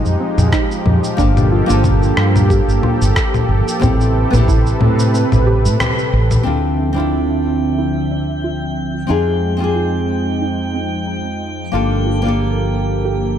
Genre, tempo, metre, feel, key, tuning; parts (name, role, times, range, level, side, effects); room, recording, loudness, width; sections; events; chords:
sunset chillout; 91 BPM; 4/4; swing 55% on 16ths; D minor; A4 = 440 Hz
nylon-string guitar; accompaniment; 0.0-13.4 s; Ab3 to C5; -21 LUFS; moving between left 5 dB and right 6 dB; auto-pan, tape echo
lush unison pad; sustained chords; 0.0-13.4 s; C3 to G5; -21 LUFS; equal; chorus
soft round pluck; arpeggios; 0.0-13.2 s; C4 to A4; -26 LUFS; right 2 dB
mellow fretless electric bass; bass; 0.1-13.4 s; G1 to A2; -17 LUFS; equal
electronic cabasa, congas and rim click; drums; 0.1-6.4 s; -19 LUFS; left 2 dB
electronic kick drum; drums; 0.5-4.6 s; -18 LUFS; equal
drifting glass-harmonics texture; texture; 6.9-13.4 s; G5; -30 LUFS; equal; chorus, built-in reverb
light reverb, digital ambience; -13 LUFS; side -9 dB against mid
0.0-6.5 A section; 6.5-13.4 B section
kick drops out 5.1-6.5; band accent 5.8-6.1; filter sweep on analog synth pad 6.5-13.4
0.0 Fm9; 1.2 Gm9; 3.8 Am9; 6.5 Dm9; 9.1 Fm9; 11.7 Gm9